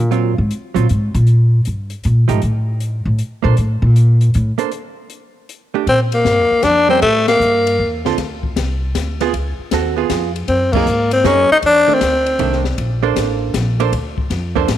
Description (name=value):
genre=jazz, small-group swing and bop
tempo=156 BPM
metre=3/4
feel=swing 67% on 8ths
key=Bb major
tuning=A4 = 440 Hz
part: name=hollow-body jazz guitar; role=accompaniment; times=0.0-14.7 s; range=D3 to C5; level=-21 LUFS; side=right 12 dB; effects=none
part: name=upright bass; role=bass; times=0.0-14.8 s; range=A1 to Bb2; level=-16 LUFS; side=equal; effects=none
part: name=open jazz drum kit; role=drums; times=0.1-14.8 s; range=crash cymbal, hi-hat, kick drum, ride cymbal, snare drum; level=-25 LUFS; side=left 6 dB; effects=none
part: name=growling tenor saxophone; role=melody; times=5.9-8.0, 10.5-12.7 s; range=A3 to Eb4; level=-13 LUFS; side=left 2 dB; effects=none
room=light reverb, studio reverb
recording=1960s-style stereo with parts hard left and right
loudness=-13 LUFS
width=side -11 dB against mid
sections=0.0-5.9 A section; 5.9-14.8 B section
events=upright bass solo 0.0-5.9; band accent 7.2, 10.7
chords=0.1 Ab13; 1.3 Gm; 2.4 N.C.; 3.6 Bbmaj7; 5.9 Bb6; 7.0 A5; 8.2 D7(no3); 9.3 Db7; 10.5 Gb69; 11.6 F6; 12.8 Bbmaj9